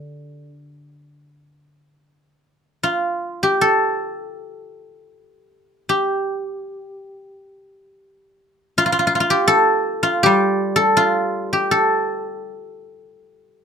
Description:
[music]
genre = chinese traditional, Chinese solo plucked strings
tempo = 81 BPM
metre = 4/4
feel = uneven beats, rubato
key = unclear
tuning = A4 = 439 Hz
[part]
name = guzheng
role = solo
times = 0.0-13.6 s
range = D3 to A4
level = -17 LUFS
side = equal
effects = none
[sound]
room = moderate studio reverb, RT60 0.6 s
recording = rough home demo mix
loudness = -16 LUFS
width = side -7 dB against mid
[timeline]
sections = 0.0-2.8 A section; 2.8-13.6 B section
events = none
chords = none

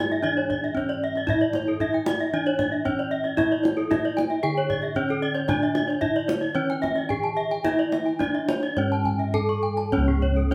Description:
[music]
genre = Balinese gamelan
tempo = 102-114 BPM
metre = 4/4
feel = straight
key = C# pelog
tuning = A4 = 438 Hz
[part]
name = gamelan-type bronze metallophone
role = melody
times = 0.0-10.5 s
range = C#4 to A4-20c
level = -28 LUFS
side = equal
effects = none
[part]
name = gamelan-type bronze metallophone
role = arpeggios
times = 0.0-10.5 s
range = A4-20c to A5-20c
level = -30 LUFS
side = equal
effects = none
[part]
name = gamelan-type bossed gongs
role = bass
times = 0.0-10.5 s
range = C#2 to G#4-30c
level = -32 LUFS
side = equal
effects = none
[part]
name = kendang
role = percussion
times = 0.1-10.5 s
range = none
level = -34 LUFS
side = equal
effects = none
[part]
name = gamelan-type bronze metallophone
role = arpeggios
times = 0.4-10.4 s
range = G#4-30c to C#6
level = -33 LUFS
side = equal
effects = none
[sound]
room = moderate large studio reverb, RT60 1.1 s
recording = band playing live in one room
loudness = -24 LUFS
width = mono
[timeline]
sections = 0.0-9.9 A section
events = none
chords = none

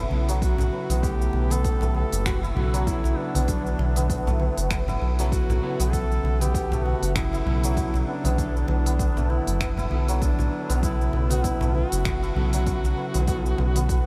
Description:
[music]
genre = organic downtempo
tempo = 98 BPM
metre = 4/4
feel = swing 57% on 16ths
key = unclear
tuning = A4 = 440 Hz
[part]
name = mellow electric guitar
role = accompaniment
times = 0.0-14.1 s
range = C#3 to A4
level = -35 LUFS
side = equal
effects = subtle chorus, sidechain pumping, delay
[part]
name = santur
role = arpeggios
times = 0.0-14.1 s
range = F#3 to E4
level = -34 LUFS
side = equal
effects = delay
[part]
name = round analog bass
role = bass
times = 0.0-14.0 s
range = F#1 to B1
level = -26 LUFS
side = equal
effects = sidechain pumping
[part]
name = congas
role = percussion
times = 0.1-13.9 s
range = none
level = -37 LUFS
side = equal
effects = none
[part]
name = deep house drum kit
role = drums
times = 0.3-14.0 s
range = finger snaps, hi-hat, shaker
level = -38 LUFS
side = equal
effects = none
[part]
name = warm duduk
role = melody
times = 0.4-14.1 s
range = D4 to A4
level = -34 LUFS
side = equal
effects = tape echo
[part]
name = electronic kick drum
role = drums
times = 0.4-14.0 s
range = none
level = -30 LUFS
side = equal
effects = none
[sound]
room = light reverb, digital ambience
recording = none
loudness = -24 LUFS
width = mono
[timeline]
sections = 0.0-14.1 A section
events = none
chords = 0.0 Dadd9

